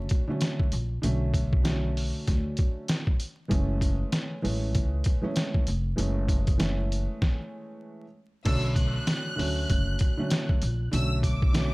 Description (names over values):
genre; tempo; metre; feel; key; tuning
hip hop, boom-bap hip-hop; 97 BPM; 4/4; swing 59% on 16ths; B dorian; A4 = 441 Hz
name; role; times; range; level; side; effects
warm upright piano; accompaniment; 0.0-11.7 s; D3 to C#4; -32 LUFS; right 1 dB; none
upright bass; bass; 0.0-11.7 s; E#1 to D2; -28 LUFS; equal; tube saturation
trip hop sampler-style drum kit; drums; 0.1-11.7 s; crash cymbal, hi-hat, kick drum, snare drum; -26 LUFS; equal; none
clear saxophone section; stabs; 8.4-8.6 s; F#3 to A4; -41 LUFS; equal; analog delay
warm studio violin section; melody; 8.5-11.7 s; D6 to F#6; -35 LUFS; equal; analog delay
room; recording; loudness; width
small room ambience; dry, gritty hardware recording, vinyl crackle; -24 LUFS; side -23 dB against mid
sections
0.0-8.5 A section; 8.5-11.7 B section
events
stop 7.2-8.5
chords
0.0 Bm7; 3.5 F#m7; 8.5 Bm7